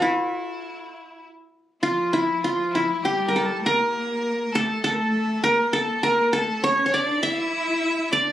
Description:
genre	arabic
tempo	100 BPM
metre	3/4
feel	straight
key	A maqam hijaz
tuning	A4 = 440 Hz
part	qanun	melody	0.0-8.3 s	E4 to E5	-22 LUFS	equal	none
part	clear violin	second line	0.0-8.3 s	E4 to F5	-30 LUFS	left 2 dB	none
part	warm studio cello section	second line	1.8-8.3 s	F3 to E4	-28 LUFS	equal	none
room	light reverb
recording	recorded on a phone in the room, club reverb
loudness	-20 LUFS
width	side -12 dB against mid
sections	0.0-1.8 A section; 1.8-8.3 B section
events	none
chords	none

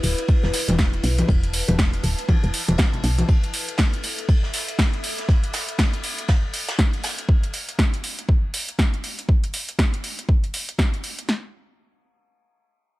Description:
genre	deep house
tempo	120 BPM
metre	4/4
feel	swing 60% on 16ths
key	unclear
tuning	A4 = 440 Hz
part	warm analog pad	sustained chords	0.0-3.2 s	none	barely audible	none	none
part	woody FM bass	bass	0.0-3.2 s	D1 to B1	-21 LUFS	equal	sidechain pumping
part	deep house drum kit	drums	0.0-11.3 s	hi-hat, snare drum	-26 LUFS	equal	overdrive, small room ambience
part	vintage brush drum kit	drums	0.0-7.2 s	ride cymbal, snare drum	-33 LUFS	left 2 dB	sidechain pumping on cymbals, high-pass filter on cymbals, small room ambience, high-pass filter on snare, high-pass filter on room
part	warbly tape-like pad	texture	0.0-7.3 s	E4 to D6	-34 LUFS	left 2 dB	chorus, built-in reverb, phaser, sidechain pumping
part	deep house drum kit	drums	0.3-11.4 s	kick drum, snare drum	-19 LUFS	equal	overdrive, small room ambience
part	congas	percussion	0.4-3.3 s	none	-27 LUFS	left 1 dB	sidechain pumping on perc
room	studio ambience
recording	none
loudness	-19 LUFS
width	side -18 dB against mid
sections	0.0-11.3 A section; 11.3-13.0 B section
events	fade-out on ambient pad 0.0-7.3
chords	0.0 Em9; 3.3 Asus4; 11.3 N.C.

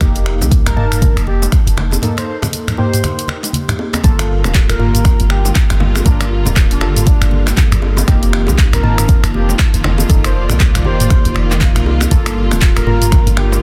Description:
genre	afro house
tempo	119 BPM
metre	4/4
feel	swing 59% on 16ths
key	unclear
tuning	A4 = 440 Hz
part	warm analog keys	stabs	0.0-13.6 s	Bb3 to A5	-25 LUFS	equal	chorus, sidechain pumping, digital delay
part	warm 808-style bass	bass	0.0-13.6 s	D1 to C2	-19 LUFS	equal	tube saturation, sidechain pumping
part	afro-pop drum kit	drums	0.0-13.6 s	finger snaps, handclaps, hi-hat, shaker, toms	-21 LUFS	equal	soft clipping on snare
part	electronic kick drum	drums	0.0-13.2 s	none	-15 LUFS	equal	none
part	bongos	percussion	0.0-13.6 s	none	-27 LUFS	equal	none
part	congas	percussion	0.0-13.5 s	none	-25 LUFS	equal	none
part	expressive synth lead	melody	0.7-13.6 s	D4 to C5	-28 LUFS	equal	subtle chorus, tape echo
part	warm studio string section	sustained chords	4.0-13.6 s	D3 to D5	-26 LUFS	equal	sidechain pumping
room	little or no reverb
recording	dense, heavily limited modern master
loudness	-13 LUFS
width	mono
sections	0.0-13.6 A section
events	break 2.0-4.0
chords	0.0 F7sus4; 4.0 Gm7; 8.1 F7sus4; 12.1 Gm7

